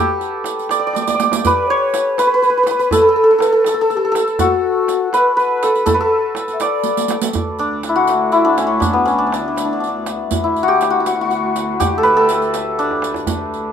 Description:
Persian modal ensemble; 81 BPM (dotted quarters); 6/8; straight; D dastgah mahur; A4 = 437 Hz
santur; melody; 0.0-13.7 s; B3 to D5; -15 LUFS; equal
riq; percussion; 0.2-13.6 s; -26 LUFS; right 6 dB
tombak; percussion; 0.2-13.4 s; -25 LUFS; right 3 dB
breathy mellow low ney; second line; 1.4-7.2 s; F#4 to E5; -18 LUFS; left 6 dB
clear chamber cello section; drone; 7.3-13.7 s; D2; -28 LUFS; right 1 dB
light reverb; minimal, uncompressed stereo recording; -14 LUFS; side -8 dB against mid
0.0-7.4 A section; 7.4-13.7 B section
drum fill 0.9-1.4, 6.9-7.4, 12.8-13.3
0.70 | 1.44 2.18 | 2.92 3.65 | 4.39 5.13 | 5.87 6.61 | 7.35 8.09 | 8.83 9.57 | 10.31 11.05 | 11.80 12.54 | 13.28

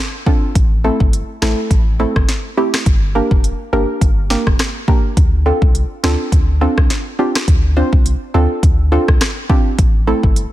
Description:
dancehall; 104 BPM; 4/4; swing 56% on 16ths; D minor; A4 = 440 Hz
soft round pluck; accompaniment; 0.3-10.2 s; A3 to C5; -19 LUFS; right 1 dB; chorus, sidechain pumping
afro-pop drum kit; drums; 0.3-10.5 s; hi-hat, kick drum, rim click, snare drum; -14 LUFS; equal
punchy sub bass; bass; 0.6-10.5 s; F1 to D2; -16 LUFS; equal
little or no reverb; dense, heavily limited modern master; -12 LUFS; side -14 dB against mid
0.0-10.5 A section
0.0 Dm7; 0.6 Am; 2.9 Gm; 5.2 Dm7; 9.8 Am
| 0.55 1.13 1.71 2.29 | 2.86 3.44 4.02 4.59 | 5.17 5.75 6.32 6.90 | 7.48 8.05 8.63 9.21 | 9.79 10.36

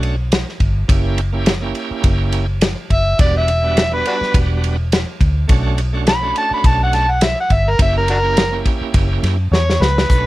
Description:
straight-eighth soul blues; 104 BPM; 4/4; swing 56% on 16ths; A4 = 440 Hz
bright tonewheel organ; accompaniment; 0.0-10.3 s; G3 to G4; -24 LUFS; right 5 dB; slow rotary speaker, overdrive
vintage muted fingered electric bass; bass; 0.0-10.3 s; E1 to F#2; -18 LUFS; equal
warm soul drum kit; drums; 0.0-10.2 s; hi-hat, kick drum, ride cymbal, snare drum; -17 LUFS; equal
overdriven harmonica; melody; 2.9-10.3 s; D4 to B5; -17 LUFS; equal
little or no reverb; -14 LUFS; side -17 dB against mid
0.0-10.1 A section
harmonica solo 0.0-10.1; drum fill 9.5-10.1
0.0 Bm7; 0.9 F#7b9; 3.2 Em7; 5.5 Bm7; 7.8 F#7b9
0.31 | 0.89 1.46 2.04 2.61 | 3.19 3.76 4.34 4.91 | 5.49 6.07 6.64 7.22 | 7.79 8.37 8.95 9.52 | 10.10

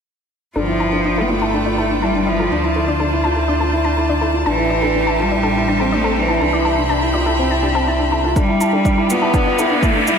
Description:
piano and strings electronica; 123 BPM; 4/4; straight; A4 = 441 Hz
clear cello; melody; 0.6-10.2 s; E3 to B3; -20 LUFS; right 1 dB; diffuse ambient delay
clear string quartet; sustained chords; 0.6-10.2 s; F4 to B5; -23 LUFS; equal; sidechain pumping, low-pass filter
analog pluck; arpeggios; 0.6-10.1 s; G4 to A5; -24 LUFS; left 2 dB; chorus, sidechain pumping, diffuse ambient delay
felt-muted upright piano; riff; 0.6-10.1 s; C4 to F4; -20 LUFS; left 1 dB; diffuse ambient delay
dark detuned saw bass; bass; 0.6-10.2 s; G1 to D2; -23 LUFS; right 1 dB; sidechain pumping, high-pass filter
electronic kick drum; drums; 8.4-9.9 s; -18 LUFS; equal; overdrive
shaker; drums; 8.4-10.2 s; -28 LUFS; right 2 dB; overdrive
riser; sound effects; 9.1-10.2 s; -22 LUFS; right 1 dB
wet lush hall reverb, RT60 1.7 s; dreamy mix soaked in reverb; -14 LUFS; side -6 dB against mid
0.6-8.4 A section; 8.4-10.2 B section
filter sweep on synth arpeggio sound 0.6-8.4; build-up 8.4-10.2; riser 9.1-10.2
0.6 G7; 2.5 Dm7; 4.5 Am7; 6.4 Cmaj7; 8.4 G7
| 0.56 1.05 1.54 2.03 | 2.51 3.00 3.49 3.98 | 4.46 4.95 5.44 5.93 | 6.42 6.90 7.39 7.88 | 8.37 8.86 9.34 9.83

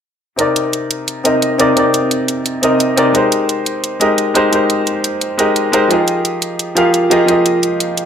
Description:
liquid drum and bass; 174 BPM; 4/4; straight; C minor; A4 = 439 Hz
bright baby grand piano; accompaniment; 0.4-8.1 s; C3 to F5; -12 LUFS; equal; low-pass filter, digital delay
electronic hi-hat; drums; 0.4-8.0 s; -19 LUFS; right 2 dB
moderate digital room reverb, RT60 0.9 s, small room ambience; -12 LUFS; side -8 dB against mid
0.4-8.1 A section
filter sweep on grand piano 0.4-8.1
0.4 Cm9; 3.1 Abmaj7; 5.9 Fm11
| 0.39 0.73 1.08 1.42 | 1.77 2.11 2.46 2.80 | 3.15 3.49 3.84 4.18 | 4.53 4.87 5.22 5.56 | 5.91 6.25 6.59 6.94 | 7.29 7.63 7.97

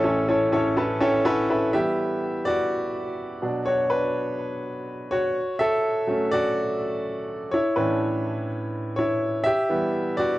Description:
pop; 124 BPM; 4/4; straight; A4 = 439 Hz
clear grand piano; solo; 0.0-10.4 s; A1 to C#6; -22 LUFS; equal; cassette tape
moderate booth ambience, RT60 0.2 s; home recording on cassette; -22 LUFS; side -17 dB against mid
0.0-1.7 A section; 1.7-10.4 B section
grand piano fill 0.3-1.7; grand piano solo 1.7-10.4
0.0 A; 1.7 Em; 3.4 Bm; 5.4 F#m; 7.5 A; 9.5 Em
0.29 0.77 1.26 | 1.74 2.22 2.70 3.19 | 3.67 4.15 4.63 5.12 | 5.60 6.08 6.56 7.05 | 7.53 8.01 8.49 8.98 | 9.46 9.94

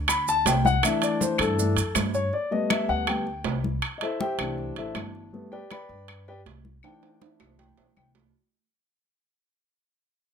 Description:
Afro-Cuban jazz; 160 BPM; 4/4; straight; A4 = 438 Hz
upright bass; bass; 0.0-8.3 s; G1 to G2; -30 LUFS; equal
warm concert grand piano; accompaniment; 0.1-8.3 s; E3 to B5; -26 LUFS; left 3 dB
claves; percussion; 0.1-8.2 s; -31 LUFS; left 8 dB
congas; percussion; 0.1-8.3 s; -32 LUFS; left 5 dB
maracas; percussion; 0.1-2.3 s; -30 LUFS; right 8 dB
timbales; percussion; 0.1-8.2 s; -29 LUFS; right 10 dB
little or no reverb; close, detailed microphones; -23 LUFS; side -7 dB against mid
0.0-8.3 A section
fade-out 0.0-8.3; grand piano solo 0.0-8.3; drum fill 6.8-8.3
0.0 Gadd9; 0.8 C69 (rootless); 2.3 Gadd9; 3.8 C6; 5.3 Gadd9; 6.8 C6
0.08 0.45 | 0.83 1.20 1.58 1.95 | 2.33 2.70 3.08 3.46 | 3.83 4.21 4.58 4.96 | 5.33 5.71 6.08 6.46 | 6.84 7.21 7.59 7.96

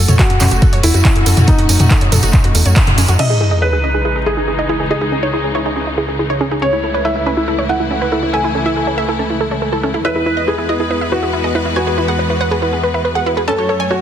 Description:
uplifting trance; 140 BPM; 4/4; straight; A4 = 439 Hz
felt-muted upright piano; second line; 0.0-14.0 s; D#4 to G#5; -21 LUFS; left 1 dB; tape echo
clear studio string section; sustained chords; 0.0-14.0 s; C#2 to C#5; -20 LUFS; left 1 dB; sidechain pumping, low-pass filter
wide unison pluck; arpeggios; 0.0-14.0 s; C#4 to E5; -22 LUFS; right 3 dB; sidechain pumping, tape echo
tight sequencer bass; bass; 0.0-3.2 s; F#1 to F#2; -13 LUFS; equal; sidechain pumping
punchy analog drum machine; drums; 0.1-3.3 s; crash cymbal, handclaps, hi-hat, toms; -17 LUFS; equal; sidechain pumping on hats, sidechain pumping on toms, sidechain pumping on cymbals
tambourine; percussion; 0.1-3.2 s; -23 LUFS; right 7 dB
electronic kick drum; drums; 0.2-2.8 s; -13 LUFS; equal
wide unison pluck; melody; 3.2-14.0 s; E4 to A5; -19 LUFS; right 1 dB; sidechain pumping, digital delay
sub drop and riser; sound effects; 3.2-4.9, 13.5-14.0 s; -18 LUFS; equal
moderate lush hall reverb, RT60 1.8 s; dense, heavily limited modern master; -12 LUFS; side -10 dB against mid
0.0-3.2 A section; 3.2-14.0 B section
band accent 2.8; impact 3.2-4.9; filter sweep on synth pluck 3.2-14.0; filter sweep on synth arpeggio sound 3.2-14.0
0.0 F#m; 3.2 C#madd9; 6.6 A/C#; 10.1 E; 13.5 F#m
0.19 0.62 1.05 | 1.48 1.91 2.33 2.76 | 3.19 3.62 4.05 4.48 | 4.91 5.33 5.76 6.19 | 6.62 7.05 7.48 7.91 | 8.34 8.76 9.19 9.62 | 10.05 10.48 10.91 11.34 | 11.76 12.19 12.62 13.05 | 13.48 13.91

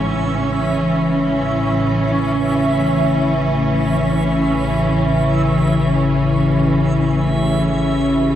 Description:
dark ambient drone; free time; A4 = 440 Hz
rich symphonic cello section; sustained chords; 0.0-8.4 s; E3 to C#4; -19 LUFS; equal
clear grand piano; arpeggios; 0.0-8.4 s; G#2 to C#4; -28 LUFS; right 3 dB
analog drone; drone; 0.0-8.4 s; A1 to C#3; -18 LUFS; left 1 dB; chorus
backwards swelling texture; texture; 0.0-8.4 s; E5; -24 LUFS; right 3 dB; built-in reverb
wet cathedral reverb, RT60 5.4 s; worn, warbling old tape, cassette tape, warbly pitch drift; -14 LUFS; side -11 dB against mid
0.0-8.4 A section
0.0 C#m/A
free time

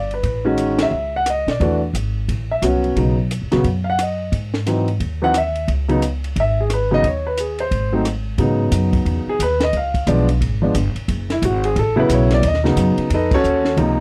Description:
jazz piano trio; 177 BPM; 4/4; swing 62% on 8ths; C# minor; A4 = 440 Hz
warm grand piano; melody; 0.0-14.0 s; B#2 to F#5; -20 LUFS; equal
upright bass; bass; 0.0-14.0 s; F#1 to B2; -23 LUFS; equal
compact cocktail drum kit; drums; 0.1-13.9 s; crash cymbal, hi-hat, kick drum, ride cymbal, rim click, snare drum; -28 LUFS; equal
little or no reverb; dry, close 1970s-style studio recording; -19 LUFS; mono
0.0-8.4 A section; 8.4-14.0 B section
band accent 0.7, 13.3
0.2 Amaj7; 1.6 E9; 2.3 Aadd9; 3.0 Badd9; 4.3 G#7b13; 5.7 C#7sus2; 7.0 G#sus4/D#; 7.7 G#; 8.4 C#m11; 9.7 C#7b9; 11.1 F#m11; 12.4 B9
| 0.24 0.58 0.92 1.26 | 1.60 1.94 2.28 2.62 | 2.96 3.30 3.64 3.98 | 4.32 4.66 5.00 5.34 | 5.68 6.02 6.36 6.70 | 7.04 7.38 7.71 8.05 | 8.39 8.73 9.06 9.40 | 9.74 10.07 10.41 10.75 | 11.08 11.42 11.76 12.09 | 12.43 12.77 13.10 13.44 | 13.78

